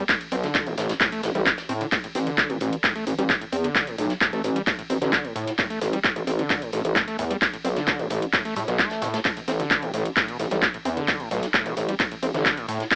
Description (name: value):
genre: driving peak-time techno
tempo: 131 BPM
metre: 4/4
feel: straight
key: A minor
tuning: A4 = 440 Hz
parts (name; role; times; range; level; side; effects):
- overdriven acid bass; riff; 0.0-13.0 s; A2 to C4; -33 LUFS; equal; distortion, sidechain pumping, cassette tape, tape echo
- electronic kick drum; drums; 0.1-13.0 s; none; -31 LUFS; equal; none
- techno drum kit; drums; 0.1-13.0 s; handclaps, hi-hat, ride cymbal; -27 LUFS; equal; sidechain pumping on hats, sidechain pumping on cymbals
- warm soul drum kit; drums; 0.1-13.0 s; hi-hat, snare drum; -41 LUFS; equal; none
- gritty driven synth bass; bass; 0.3-12.8 s; A1 to A2; -28 LUFS; equal; sidechain pumping
room: light reverb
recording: home recording on cassette, AM radio sound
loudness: -24 LUFS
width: mono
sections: 0.0-13.0 A section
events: none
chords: 0.0 A5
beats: | 0.09 0.55 1.01 1.46 | 1.92 2.38 2.84 3.30 | 3.75 4.21 4.67 5.13 | 5.59 6.04 6.50 6.96 | 7.42 7.88 8.33 8.79 | 9.25 9.71 10.17 10.62 | 11.08 11.54 12.00 12.46 | 12.91